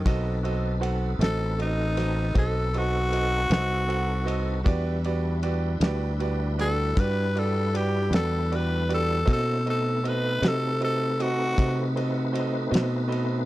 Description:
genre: slow blues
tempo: 52 BPM (dotted quarters)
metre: 12/8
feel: straight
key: unclear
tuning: A4 = 440 Hz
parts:
  - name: growling tenor saxophone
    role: melody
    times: 0.0-11.9 s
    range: D#3 to B4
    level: -28 LUFS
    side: left 1 dB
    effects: none
  - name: tonewheel organ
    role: sustained chords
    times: 0.0-13.5 s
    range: G3 to C5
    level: -34 LUFS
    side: equal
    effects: slow rotary speaker, chorus vibrato
  - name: fingered electric bass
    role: bass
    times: 0.0-13.5 s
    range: A1 to C3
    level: -26 LUFS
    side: equal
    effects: none
  - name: clear concert grand piano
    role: accompaniment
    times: 0.1-13.5 s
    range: F#4 to B5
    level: -32 LUFS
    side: right 5 dB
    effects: none
  - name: warm soul drum kit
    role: drums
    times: 0.1-13.3 s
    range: kick drum, ride cymbal, snare drum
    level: -24 LUFS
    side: equal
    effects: none
room: little or no reverb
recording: dry, close 1970s-style studio recording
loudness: -23 LUFS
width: side -16 dB against mid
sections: 0.0-13.5 A section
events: tenor saxophone solo 0.0-13.5; grand piano fill 12.7-13.5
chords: 0.0 B7b9; 4.7 Em7; 9.3 B7b9

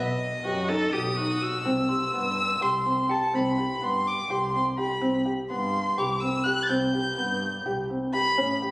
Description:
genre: contemporary instrumental, chamber music in an uneven meter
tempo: 250 BPM (eighths)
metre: 7/8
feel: straight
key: unclear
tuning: A4 = 439 Hz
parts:
  - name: dark violin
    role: melody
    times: 0.0-8.6 s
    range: D#5 to A6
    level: -26 LUFS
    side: equal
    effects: none
  - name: felt-muted upright piano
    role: arpeggios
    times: 0.0-8.7 s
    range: B3 to G4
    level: -28 LUFS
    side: equal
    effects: none
  - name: muted double bass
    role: bass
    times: 0.0-8.7 s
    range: A1 to G2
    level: -33 LUFS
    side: equal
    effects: none
  - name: rich viola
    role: second line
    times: 0.5-1.7 s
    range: F#4 to A4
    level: -29 LUFS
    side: equal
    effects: none
  - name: glockenspiel with hard plastic mallets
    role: texture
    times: 1.9-6.9 s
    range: G5 to C6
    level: -38 LUFS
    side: equal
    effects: none
room: moderate concert hall reverb, RT60 2.3 s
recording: recorded on a phone in the room, studio reverb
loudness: -23 LUFS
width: side -21 dB against mid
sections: 0.0-1.7 A section; 1.7-8.7 B section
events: none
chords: 0.0 B; 1.7 Cmaj7(no3)

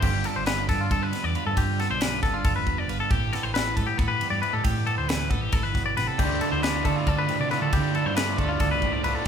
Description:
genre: math rock and midwest emo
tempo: 273 BPM (eighths)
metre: 7/8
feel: straight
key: unclear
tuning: A4 = 440 Hz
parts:
  - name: twelve-string electric guitar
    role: accompaniment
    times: 0.0-9.3 s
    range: E2 to G4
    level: -32 LUFS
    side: right 6 dB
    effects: none
  - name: twangy electric guitar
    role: arpeggios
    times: 0.0-9.3 s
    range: F4 to D5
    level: -27 LUFS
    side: left 4 dB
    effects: none
  - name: raw garage guitar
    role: riff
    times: 0.0, 6.2-9.3 s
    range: D3 to F4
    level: -29 LUFS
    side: right 2 dB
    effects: overdrive
  - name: hollow-body short-scale fingered electric bass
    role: bass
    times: 0.0-9.3 s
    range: F1 to D3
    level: -29 LUFS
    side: equal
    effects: none
  - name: crisp fusion drum kit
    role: drums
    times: 0.0-9.3 s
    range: crash cymbal, kick drum, ride cymbal, snare drum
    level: -28 LUFS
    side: equal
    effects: none
room: moderate large studio reverb, RT60 1.2 s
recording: band playing live in one room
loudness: -22 LUFS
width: side -8 dB against mid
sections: 0.0-9.3 A section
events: none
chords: 0.0 F; 3.1 Am9; 6.2 Dm11

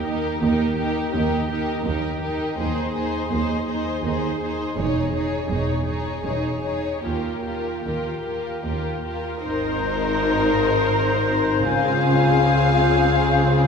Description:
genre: cinematic, emotional film score for orchestra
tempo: 73-86 BPM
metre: 3/4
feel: rubato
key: Ab major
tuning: A4 = 440 Hz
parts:
  - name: muted symphonic violin section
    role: melody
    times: 0.0-13.7 s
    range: Bb4 to F5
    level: -28 LUFS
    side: left 4 dB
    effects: none
  - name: muted chamber violin section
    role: second line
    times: 0.0-13.7 s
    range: G4 to Bb4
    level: -30 LUFS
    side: left 2 dB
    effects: none
  - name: muted symphonic viola section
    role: accompaniment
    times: 0.0-13.7 s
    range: C4 to F4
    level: -29 LUFS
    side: right 3 dB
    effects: none
  - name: muted symphonic cello section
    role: bass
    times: 0.0-13.7 s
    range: Eb2 to Db3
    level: -26 LUFS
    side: right 2 dB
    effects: none
  - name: muted symphonic double bass section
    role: bass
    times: 0.0-13.7 s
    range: Fb1 to Eb2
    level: -28 LUFS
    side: right 2 dB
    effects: none
  - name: bright concert flute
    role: second line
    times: 9.4-13.7 s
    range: Ab5 to Bb5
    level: -28 LUFS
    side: left 2 dB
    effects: none
  - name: dark clarinet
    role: second line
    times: 9.4-13.7 s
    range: Eb4 to F4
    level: -27 LUFS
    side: left 7 dB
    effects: none
  - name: warm oboe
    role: second line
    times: 9.4-13.7 s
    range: C5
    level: -26 LUFS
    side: left 1 dB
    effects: none
  - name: mellow French horn section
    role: sustained chords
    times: 9.4-13.7 s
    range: C4 to Bb4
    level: -25 LUFS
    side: left 6 dB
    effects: none
room: wet church reverb, RT60 3.0 s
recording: recorded in a church or concert hall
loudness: -20 LUFS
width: side -6 dB against mid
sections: 0.0-9.4 A section; 9.4-13.7 B section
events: none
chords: 0.0 Eb; 4.8 Dbmadd9/Fb; 7.0 Ebadd9; 9.4 Abadd9; 11.7 Dbmaj7

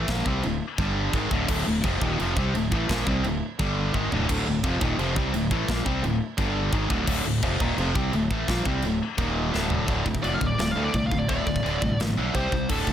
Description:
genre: heavy metal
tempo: 171 BPM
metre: 4/4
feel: straight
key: D phrygian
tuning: A4 = 440 Hz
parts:
  - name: high-gain distorted guitar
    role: riff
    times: 0.0-12.9 s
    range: D2 to C4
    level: -25 LUFS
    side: left 1 dB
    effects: distortion
  - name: fuzz fingered electric bass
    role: bass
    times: 0.0-12.9 s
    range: D1 to D2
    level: -29 LUFS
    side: equal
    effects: overdrive
  - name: tight metal drum kit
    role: drums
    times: 0.1-12.9 s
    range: china cymbal, crash cymbal, kick drum, snare drum, toms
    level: -29 LUFS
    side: equal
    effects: none
  - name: high-gain lead guitar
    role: melody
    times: 10.2-12.9 s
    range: A4 to F5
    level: -29 LUFS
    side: equal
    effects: distortion
room: little or no reverb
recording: none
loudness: -22 LUFS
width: side -10 dB against mid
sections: 0.0-9.9 A section; 9.9-12.9 B section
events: half time 0.0-9.9; drum fill 3.9-4.3, 9.5-9.9; lead electric guitar solo 9.9-12.9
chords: 0.0 Dm; 0.8 G5; 1.1 Dm; 3.6 G5; 3.9 Dm; 6.4 G5; 6.7 Dm; 9.2 Eb5; 9.5 D5; 12.3 C5

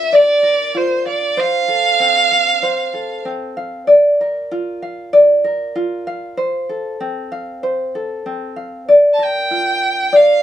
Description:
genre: acoustic pop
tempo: 96 BPM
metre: 4/4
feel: straight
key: F major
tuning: A4 = 439 Hz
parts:
  - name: rich violin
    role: melody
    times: 0.0-3.3, 9.1-10.4 s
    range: C5 to A5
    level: -15 LUFS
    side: right 3 dB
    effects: none
  - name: tenor ukulele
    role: accompaniment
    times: 0.0-10.4 s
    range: C4 to F5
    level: -15 LUFS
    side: equal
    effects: none
room: light reverb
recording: band playing live in one room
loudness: -13 LUFS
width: side -11 dB against mid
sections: 0.0-10.4 A section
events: none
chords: 0.0 Bb; 1.4 F; 3.9 Bb; 6.4 F; 8.9 Bb

